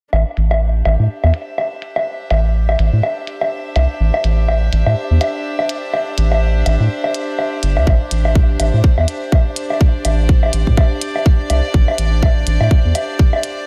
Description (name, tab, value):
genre	minimal techno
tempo	124 BPM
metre	4/4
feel	swing 57% on 16ths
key	A minor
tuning	A4 = 442 Hz
part	round analog bass	bass	0.1-12.9 s	G1 to A2	-16 LUFS	equal	sidechain pumping
part	woodblock	percussion	0.1-13.4 s	none	-23 LUFS	equal	overdrive, small room reverb, tape echo
part	rich chamber string section	texture	0.1-13.7 s	D4 to E5	-28 LUFS	equal	sidechain pumping
part	electronic hi-hat	drums	0.4-13.5 s	none	-30 LUFS	equal	low-pass filter on hats, small room reverb
part	electronic kick drum	drums	7.9-13.3 s	none	-14 LUFS	equal	small room reverb
room	light reverb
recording	none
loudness	-16 LUFS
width	mono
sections	0.1-13.7 A section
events	fade-in on string section 0.1-13.7; filter sweep on analog synth bass 0.1-13.7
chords	0.1 Am